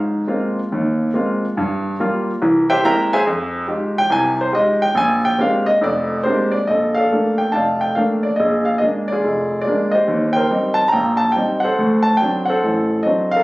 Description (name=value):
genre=solo jazz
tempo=141 BPM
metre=4/4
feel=swing 67% on 8ths, rubato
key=Bb major from 6.7 s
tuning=A4 = 440 Hz
part: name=warm baby grand piano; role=solo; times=0.0-13.4 s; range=F1 to Bb5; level=-15 LUFS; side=equal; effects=none
room=moderate club reverb, RT60 0.7 s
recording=recorded on a phone in the room, studio reverb, compression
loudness=-15 LUFS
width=side -20 dB against mid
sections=0.0-6.7 A section; 6.7-13.4 B section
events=grand piano solo 0.0-6.7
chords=0.0 Ab69; 1.6 Gm7; 2.4 C7b13; 3.3 Fm9; 5.0 Bb13; 6.7 Bbmaj7; 8.4 Bb7; 10.1 Eb6; 11.8 D7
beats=0.29 0.72 1.15 | 1.57 2.00 2.42 2.84 | 3.27 3.69 4.11 4.54 | 4.96 5.39 5.82 6.25 | 6.69 7.12 7.54 7.97 | 8.40 8.82 9.24 9.66 | 10.09 10.51 10.93 11.36 | 11.78 12.21 12.64 13.07